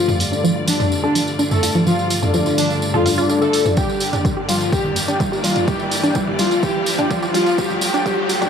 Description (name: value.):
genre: melodic techno.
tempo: 126 BPM.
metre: 4/4.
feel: straight.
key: G minor.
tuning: A4 = 440 Hz.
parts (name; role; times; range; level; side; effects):
fat analog lead; melody; 0.0-8.3 s; D4 to A4; -22 LUFS; left 1 dB; analog chorus, sidechain pumping, tape echo.
dark chamber violin section; second line; 0.0-8.3 s; D4 to A4; -27 LUFS; equal; sidechain pumping, low-pass filter, tape echo.
clear studio string section; sustained chords; 0.0-8.5 s; G2 to D5; -28 LUFS; left 2 dB; sidechain pumping, low-pass filter.
wide unison pluck; arpeggios; 0.0-8.5 s; F3 to F5; -23 LUFS; right 1 dB; sidechain pumping, tape echo.
analog drone; drone; 0.0-8.5 s; G2 to D3; -30 LUFS; equal; chorus, sidechain pumping.
riser; sound effects; 1.2-8.5 s; none; -26 LUFS; equal; none.
punchy analog drum machine; drums; 0.1-8.5 s; hi-hat, toms; -24 LUFS; right 1 dB; sidechain pumping on toms, sidechain pumping on hats.
tambourine; percussion; 0.1-8.5 s; none; -27 LUFS; right 2 dB; none.
analog synth brass; stabs; 0.3-8.5 s; D4 to G5; -24 LUFS; left 2 dB; chorus, sidechain pumping, tape echo.
electronic kick drum; drums; 3.8-8.2 s; none; -23 LUFS; equal; none.
room: moderate scoring stage reverb, RT60 1.9 s, digital ambience.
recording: dry, gritty hardware recording, high-pass filter.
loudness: -16 LUFS.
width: side -7 dB against mid.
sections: 0.0-8.5 A section.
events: build-up 0.0-8.5; filter sweep on synth pluck 0.0-8.5; filter sweep on analog synth lead 0.0-8.5; filter sweep on violin section 0.0-8.5; filter sweep on analog polysynth 0.0-8.5; riser 1.2-8.5.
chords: 0.0 Dm/G; 3.8 Gm; 7.6 Dm/G.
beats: 0.44 0.92 1.39 | 1.87 2.34 2.82 3.30 | 3.77 4.25 4.72 5.20 | 5.68 6.15 6.63 7.11 | 7.58 8.06.